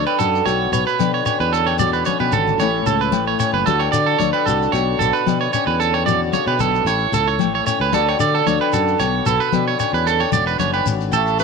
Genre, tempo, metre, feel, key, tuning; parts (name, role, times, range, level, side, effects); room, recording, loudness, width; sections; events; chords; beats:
highlife guitar band; 112 BPM; 4/4; swing 54% on 16ths; A4 = 445 Hz
flamenco guitar; accompaniment; 0.0-11.4 s; A2 to B4; -23 LUFS; left 13 dB
electric guitar at the edge of break-up; arpeggios; 0.0-11.4 s; A4 to D5; -18 LUFS; right 10 dB; slapback echo
fingered electric bass; bass; 0.0-11.4 s; E1 to D3; -23 LUFS; left 1 dB
agogo bells; percussion; 0.1-11.3 s; -29 LUFS; left 15 dB
congas; percussion; 0.2-11.4 s; -26 LUFS; left 14 dB
shekere; percussion; 0.2-11.4 s; -27 LUFS; left 6 dB
mellow small flute group; sustained chords; 11.1-11.4 s; E5 to C#6; -25 LUFS; left 2 dB
moderate plate reverb, RT60 2.5 s; 1960s-style stereo with parts hard left and right; -16 LUFS; side -5 dB against mid
0.0-11.1 A section
drum fill 2.2-2.6
0.5 Bmadd9; 2.6 A; 3.7 D; 4.7 Bmadd9; 6.9 A; 7.9 D; 9.0 Bmadd9
| 0.46 0.99 1.53 2.06 | 2.60 3.13 3.66 4.20 | 4.73 5.26 5.80 6.33 | 6.87 7.40 7.93 8.46 | 9.00 9.53 10.06 10.60 | 11.13